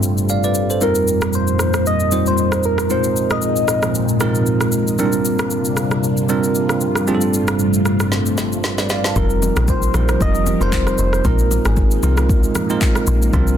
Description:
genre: amapiano.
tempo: 115 BPM.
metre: 4/4.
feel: swing 55% on 16ths.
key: F dorian.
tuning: A4 = 440 Hz.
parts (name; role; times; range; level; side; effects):
bell-like tine electric piano; accompaniment; 0.0-13.6 s; G3 to A5; -20 LUFS; right 4 dB; none.
string machine, cellos; sustained chords; 0.0-13.6 s; F2 to Bb4; -20 LUFS; left 1 dB; phaser, ensemble chorus.
deep house drum kit; drums; 0.0-13.6 s; handclaps, kick drum, rim click, shaker, snare drum; -21 LUFS; equal; none.
soft struck synth lead; melody; 0.8-3.8, 9.2-12.2 s; Ab4 to Eb5; -22 LUFS; left 2 dB; chorus, phaser, tape echo.
deep log drum bass; bass; 9.2-13.6 s; F1 to C2; -17 LUFS; equal; none.
congas and bongos; percussion; 9.2-13.5 s; none; -28 LUFS; left 3 dB; none.
room: digital ambience.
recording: dense, heavily limited modern master.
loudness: -15 LUFS.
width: side -9 dB against mid.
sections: 0.0-9.2 A section; 9.2-13.6 B section.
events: drum fill 8.1-9.2.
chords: 0.0 G9sus4; 0.8 F9sus4; 2.9 Bb9sus4; 5.0 C9sus4; 7.1 G9sus4; 9.2 F9sus4; 11.2 Bb9sus4.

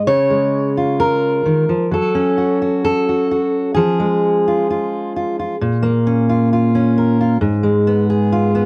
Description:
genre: folk, solo fingerstyle acoustic guitar.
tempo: 65 BPM.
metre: 4/4.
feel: straight.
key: Db major.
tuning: A4 = 439 Hz.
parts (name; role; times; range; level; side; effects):
fingerpicked steel-string acoustic guitar; solo; 0.0-8.7 s; Ab2 to Db5; -16 LUFS; equal; none.
room: moderate small room reverb, RT60 0.6 s.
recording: worn, warbling old tape, cassette tape, warbly pitch drift.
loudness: -16 LUFS.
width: mono.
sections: 0.1-8.7 A section.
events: none.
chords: 0.1 Db; 1.9 Gbm; 3.8 Fm; 5.6 Bbm; 7.4 Abm6.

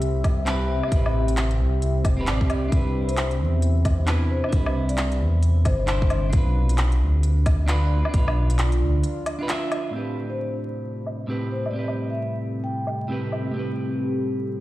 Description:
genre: future garage.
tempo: 133 BPM.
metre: 4/4.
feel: swing 62% on 16ths.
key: A minor.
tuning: A4 = 440 Hz.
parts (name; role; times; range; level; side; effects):
clean electric guitar; accompaniment; 0.0-14.6 s; A2 to E5; -29 LUFS; right 1 dB; sidechain pumping, analog delay.
deep dark ambient pad; sustained chords; 0.0-14.6 s; C4 to E5; -31 LUFS; equal; chorus, built-in reverb, sidechain pumping.
dark detuned saw bass; bass; 0.0-9.0 s; E1 to E2; -21 LUFS; equal; sidechain pumping.
organic electronic drum kit; drums; 0.0-13.4 s; handclaps, hi-hat, woodblock; -30 LUFS; equal; low-pass filter on hats, low-pass filter on cymbals, low-pass filter on snare, low-pass filter on perc.
electronic kick drum; drums; 0.2-8.2 s; none; -21 LUFS; equal; none.
vibraphone with soft mallets; melody; 3.1-6.2, 10.3-13.1 s; C5 to G5; -32 LUFS; left 2 dB; analog delay.
room: light reverb.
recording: played on a big sound system in a bare room, stone room reverb, vinyl crackle.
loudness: -20 LUFS.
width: side -16 dB against mid.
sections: 0.0-9.9 A section; 9.9-14.6 B section.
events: break 9.0-9.9; filter sweep on ambient pad 9.9-14.6.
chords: 0.0 Am7; 2.7 Cmaj7; 6.3 Bdim; 9.9 Am7.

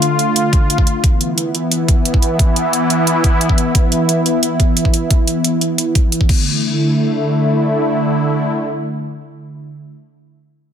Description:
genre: dark technical drum and bass.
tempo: 177 BPM.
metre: 4/4.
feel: straight.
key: D dorian.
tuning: A4 = 440 Hz.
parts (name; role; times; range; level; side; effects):
sweeping resonant pad; sustained chords; 0.0-9.9 s; D3 to F4; -16 LUFS; equal; chorus, sidechain pumping.
drum and bass drum kit; drums; 0.0-6.4 s; crash cymbal, hi-hat; -20 LUFS; right 1 dB; overdrive.
electronic kick drum; drums; 0.5-6.4 s; none; -14 LUFS; equal; overdrive.
room: light reverb.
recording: none.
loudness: -13 LUFS.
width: side -8 dB against mid.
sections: 0.0-6.5 A section; 6.5-9.2 B section.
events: none.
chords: 0.0 Dm; 1.0 E5; 6.3 D5.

